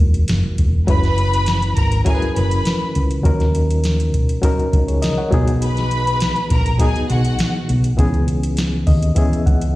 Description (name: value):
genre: lush 1970s-style soul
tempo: 101 BPM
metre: 4/4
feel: straight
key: unclear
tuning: A4 = 440 Hz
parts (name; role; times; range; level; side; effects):
- barky reed electric piano; accompaniment; 0.0-9.8 s; E3 to F#5; -22 LUFS; left 2 dB; overdrive, fast tremolo, slapback echo
- hollow-body short-scale fingered electric bass; bass; 0.0-9.8 s; E1 to D#2; -18 LUFS; equal; none
- soft vintage rhythm box; drums; 0.0-9.8 s; hi-hat, kick drum, snare drum; -19 LUFS; equal; overdrive
- warm studio string section; second line; 0.9-7.7 s; F#4 to B5; -22 LUFS; equal; slapback echo
room: little or no reverb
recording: live gig heard through the venue's PA, recital hall reverb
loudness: -15 LUFS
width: side -17 dB against mid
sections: 0.9-9.8 A section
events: reed electric piano fill 8.6-9.8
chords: 0.0 F#13; 0.9 F#7sus4; 3.2 D#m7; 5.3 B6; 8.0 C#m7